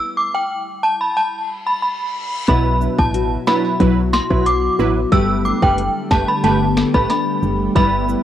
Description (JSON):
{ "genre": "dancehall", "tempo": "91 BPM", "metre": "4/4", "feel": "straight", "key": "unclear", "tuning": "A4 = 440 Hz", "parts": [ { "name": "nylon-string guitar", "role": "arpeggios", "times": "0.0-8.2 s", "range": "B2 to A4", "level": "-22 LUFS", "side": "left 8 dB", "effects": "cassette tape" }, { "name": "synth chime", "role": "melody", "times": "0.2-7.9 s", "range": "G5 to E6", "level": "-19 LUFS", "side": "equal", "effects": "ensemble chorus, tremolo, analog delay" }, { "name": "reverse cymbal", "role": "sound effects", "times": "1.4-2.5 s", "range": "none", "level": "-33 LUFS", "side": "left 5 dB", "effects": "none" }, { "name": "synth brass stab", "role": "accompaniment", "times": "2.5-8.2 s", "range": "F#3 to B4", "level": "-21 LUFS", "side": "right 8 dB", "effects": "chorus, cassette tape" }, { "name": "ethereal airy pad", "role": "sustained chords", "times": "3.3-8.2 s", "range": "D3 to G4", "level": "-24 LUFS", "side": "left 1 dB", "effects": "ensemble chorus, built-in reverb, sidechain pumping, cassette tape" }, { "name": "woody FM bass", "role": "bass", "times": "2.5-8.2 s", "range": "F#1 to B1", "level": "-21 LUFS", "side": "equal", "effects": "tube saturation" }, { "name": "island pop drum kit", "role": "drums", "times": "2.5-7.9 s", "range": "finger snaps, hi-hat, kick drum, rim click, snare drum", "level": "-19 LUFS", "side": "equal", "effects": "cassette tape" }, { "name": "woodblock and cabasa", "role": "percussion", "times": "2.5-8.2 s", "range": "none", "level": "-35 LUFS", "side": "right 9 dB", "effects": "none" } ], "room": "light reverb", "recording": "home recording on cassette", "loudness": "-15 LUFS", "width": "side -11 dB against mid", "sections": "0.0-2.5 A section; 2.5-8.2 B section", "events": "stop 0.0-2.5; reverse cymbal 1.4-2.5", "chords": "0.0 E5; 2.5 Bsus4; 5.1 Gadd9" }